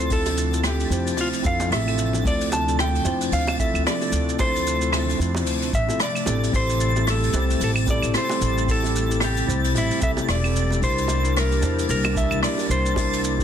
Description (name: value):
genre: sunset chillout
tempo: 112 BPM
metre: 4/4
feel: swing 58% on 16ths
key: D minor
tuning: A4 = 439 Hz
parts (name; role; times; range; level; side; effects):
- clean electric guitar; melody; 0.0-13.4 s; E4 to A5; -26 LUFS; equal; tape echo
- mellow tine electric piano; accompaniment; 0.0-13.4 s; C4 to C5; -28 LUFS; equal; auto-pan
- airy breathy pad; sustained chords; 0.0-13.4 s; C3 to G4; -30 LUFS; equal; chorus
- upright bass; bass; 0.0-13.4 s; E1 to F2; -24 LUFS; equal; none
- jazz brush drum kit; drums; 0.0-13.4 s; claves, hi-hat, rim click, shaker; -28 LUFS; equal; soft clipping on snare
- twinkling granular texture; texture; 0.0-13.4 s; A6; -33 LUFS; left 1 dB; built-in reverb
- electronic kick drum; drums; 0.1-13.4 s; none; -26 LUFS; equal; none
- bongos; percussion; 0.3-13.1 s; none; -34 LUFS; right 5 dB; none
room: light reverb, studio ambience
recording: dense, heavily limited modern master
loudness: -19 LUFS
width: side -9 dB against mid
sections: 0.0-13.4 A section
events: none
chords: 0.0 Dm7; 6.3 Am7; 10.8 C7